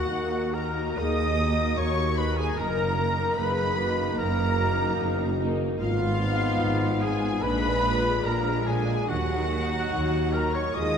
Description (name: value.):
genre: classical.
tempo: 74 BPM.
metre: 4/4.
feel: rubato.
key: Eb minor.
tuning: A4 = 440 Hz.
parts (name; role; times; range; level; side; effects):
rich studio violin section; melody; 0.0-11.0 s; F5 to Eb6; -35 LUFS; left 2 dB; none.
clear clarinet; second line; 0.0-11.0 s; F4 to Eb5; -35 LUFS; left 2 dB; none.
hollow concert flute; second line; 0.0-11.0 s; F5 to Eb6; -37 LUFS; left 2 dB; none.
rich studio violin section; second line; 0.0-11.0 s; F5 to Eb6; -38 LUFS; left 2 dB; none.
warm oboe; second line; 0.0-11.0 s; F4 to Eb5; -39 LUFS; equal; none.
rich studio viola section; accompaniment; 0.0-11.0 s; Gb3 to F4; -34 LUFS; equal; none.
bright trombone section; sustained chords; 0.0-11.0 s; D3 to Cb4; -35 LUFS; right 2 dB; none.
mellow French horn section; sustained chords; 0.0-11.0 s; D4 to Bb4; -32 LUFS; left 7 dB; none.
mellow trumpet; stabs; 0.0-11.0 s; F4 to Eb5; -32 LUFS; right 1 dB; none.
clear studio cello section; bass; 0.1-11.0 s; Eb2 to Eb3; -33 LUFS; right 2 dB; none.
mellow tuba; bass; 0.1-11.0 s; Gb1 to Eb2; -34 LUFS; right 2 dB; none.
rich studio double bass section; bass; 0.1-11.0 s; Gb1 to Eb2; -30 LUFS; right 3 dB; none.
room: wet concert hall reverb, RT60 2.1 s.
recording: dark, warm production.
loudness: -23 LUFS.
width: side -7 dB against mid.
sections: 0.0-11.0 A section.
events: none.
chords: 0.0 Ebm; 2.6 Ebm/Gb; 5.8 Fdim/Ab; 7.4 Bb7; 9.1 Ebm.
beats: 0.11 0.99 1.78 | 2.58 3.38 4.18 5.00 | 5.80 6.61 7.42 8.25 | 9.09 9.93 10.75.